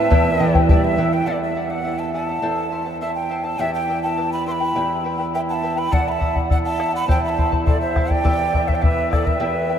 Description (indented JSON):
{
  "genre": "andean folk, Andean ensemble",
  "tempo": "103 BPM",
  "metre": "2/4",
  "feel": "straight",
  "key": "unclear",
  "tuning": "A4 = 441 Hz",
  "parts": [
    { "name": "breathy hollow quena", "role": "melody", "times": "0.0-9.8 s", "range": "D5 to C6", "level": "-23 LUFS", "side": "equal", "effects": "none" },
    { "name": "hollow quena", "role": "second line", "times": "0.0-0.7, 5.3-9.8 s", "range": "A4 to G5", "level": "-27 LUFS", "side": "right 2 dB", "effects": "none" },
    { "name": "charango", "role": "accompaniment", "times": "0.0-9.8 s", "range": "E4 to A5", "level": "-27 LUFS", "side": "left 3 dB", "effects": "none" },
    { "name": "nylon-string guitar", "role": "accompaniment", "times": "0.0-9.8 s", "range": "E2 to C4", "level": "-24 LUFS", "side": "right 4 dB", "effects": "none" },
    { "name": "bombo", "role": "percussion", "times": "0.1-0.8, 5.9-9.4 s", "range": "none", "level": "-19 LUFS", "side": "left 1 dB", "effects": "none" }
  ],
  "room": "wet huge ambient reverb, RT60 8.1 s",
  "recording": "in a vast, echoing space",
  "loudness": "-17 LUFS",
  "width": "side -9 dB against mid",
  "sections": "0.0-1.3 A section; 1.3-9.8 B section",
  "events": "break 9.4-9.8",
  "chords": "0.1 Em; 1.3 D/E; 2.4 Am/E; 3.6 G/E; 4.8 Em; 5.9 D/E; 7.1 Am/E; 8.2 G/E"
}